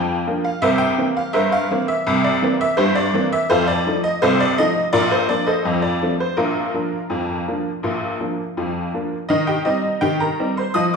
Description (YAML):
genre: ragtime piano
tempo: 83 BPM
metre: 2/4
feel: straight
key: unclear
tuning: A4 = 440 Hz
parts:
  - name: honky-tonk upright piano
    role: solo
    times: 0.0-11.0 s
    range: G1 to Eb6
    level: -17 LUFS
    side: equal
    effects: none
room: wet large studio reverb, RT60 1.3 s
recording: band playing live in one room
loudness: -17 LUFS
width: side -5 dB against mid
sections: 0.0-9.3 A section; 9.3-11.0 B section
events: none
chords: 0.0 Bb; 0.6 C7; 3.5 F7; 4.9 Bb; 5.6 F; 6.4 Bb; 9.3 Cm/Eb